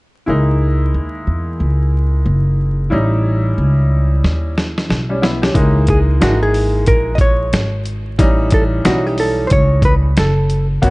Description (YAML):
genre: hip hop, jazz-hop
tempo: 91 BPM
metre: 4/4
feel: swing 61% on 16ths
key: C# dorian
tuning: A4 = 440 Hz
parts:
  - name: bright upright piano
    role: accompaniment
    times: 0.3-10.9 s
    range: E3 to G4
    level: -20 LUFS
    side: left 1 dB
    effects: none
  - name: upright bass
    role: bass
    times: 0.3-10.9 s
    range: F#1 to E2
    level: -15 LUFS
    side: equal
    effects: none
  - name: dusty soul sampler-style drum kit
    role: drums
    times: 4.2-10.9 s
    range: hi-hat, kick drum, snare drum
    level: -16 LUFS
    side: equal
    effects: none
  - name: hollow-body jazz guitar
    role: melody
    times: 5.9-10.7 s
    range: F#4 to D#5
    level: -18 LUFS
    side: right 1 dB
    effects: none
room: studio reverb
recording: dark, warm production, vinyl crackle, nothing above 11.0 kHz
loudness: -13 LUFS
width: side -23 dB against mid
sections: 0.3-5.6 A section; 5.6-10.9 B section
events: drum fill 4.2-5.6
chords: 0.3 C#m69; 2.9 A7#11; 5.6 C#m69; 8.2 A7#11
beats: | 0.28 0.94 1.60 2.25 | 2.91 3.57 4.23 4.89 | 5.55 6.21 6.87 7.53 | 8.19 8.85 9.51 10.17 | 10.83